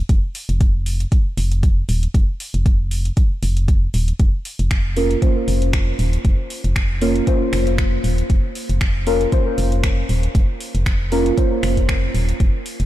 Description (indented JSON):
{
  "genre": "deep house",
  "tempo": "117 BPM",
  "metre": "4/4",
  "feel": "swing 55% on 16ths",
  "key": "unclear",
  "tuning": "A4 = 439 Hz",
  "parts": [
    { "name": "organ-like FM bass", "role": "bass", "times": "0.1-12.9 s", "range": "Eb1 to F1", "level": "-19 LUFS", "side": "equal", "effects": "sidechain pumping" },
    { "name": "deep house drum kit", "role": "drums", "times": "0.1-12.9 s", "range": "finger snaps, hi-hat", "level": "-29 LUFS", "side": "equal", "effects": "small room ambience" },
    { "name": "electronic kick drum", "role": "drums", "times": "0.1-12.5 s", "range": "none", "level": "-17 LUFS", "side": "equal", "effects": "small room ambience" },
    { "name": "deep mellow chord stab", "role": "stabs", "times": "5.0-12.4 s", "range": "Bb3 to C5", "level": "-21 LUFS", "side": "equal", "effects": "chorus, phaser, cassette tape, sidechain pumping, analog delay" }
  ],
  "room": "little or no reverb",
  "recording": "none",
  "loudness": "-16 LUFS",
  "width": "side -14 dB against mid",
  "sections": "0.0-12.9 A section",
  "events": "none",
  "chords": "0.0 N.C.; 4.2 Bbm",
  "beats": "| 0.09 0.61 1.12 1.63 | 2.15 2.66 3.17 3.68 | 4.20 4.71 5.22 5.74 | 6.25 6.76 7.27 7.79 | 8.30 8.81 9.32 9.84 | 10.35 10.86 11.38 11.89 | 12.40"
}